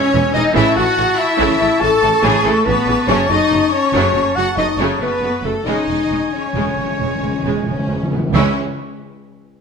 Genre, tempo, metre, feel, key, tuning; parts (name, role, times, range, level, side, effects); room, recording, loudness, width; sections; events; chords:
cinematic, heroic adventure film score; 92 BPM (dotted quarters); 12/8; uneven beats; C# minor; A4 = 440 Hz
clear symphonic violin section; melody; 0.0-8.6 s; E4 to A5; -26 LUFS; left 2 dB
clear oboe; second line; 0.0-8.5 s; E5 to A5; -27 LUFS; right 1 dB
flute section; second line; 0.0-8.6 s; C#6 to E6; -24 LUFS; left 3 dB
warm clarinet; second line; 0.0-8.5 s; A4 to A5; -22 LUFS; left 1 dB
mellow French horn section; sustained chords; 0.0-8.5 s; A3 to A4; -21 LUFS; left 6 dB
rich symphonic cello section; bass; 0.0-8.6 s; A3 to A4; -22 LUFS; right 1 dB
warm symphonic violin section; second line; 0.1-8.6 s; G#3 to C#4; -27 LUFS; left 2 dB
clear symphonic viola section; accompaniment; 0.1-8.6 s; C#3 to G#3; -23 LUFS; right 3 dB
clear symphonic double bass section; bass; 0.1-8.6 s; E1 to C#2; -22 LUFS; right 4 dB
timpani; percussion; 5.7-8.6 s; C#3; -23 LUFS; equal
moderate scoring stage reverb, RT60 1.5 s; -14 LUFS; side -6 dB against mid
0.0-8.4 A section; 8.4-9.6 B section
slowing down 3.9-8.4; timpani fill 5.7-8.4
0.0 E; 0.6 A; 3.1 F#m; 5.7 C#m/E; 8.4 C#m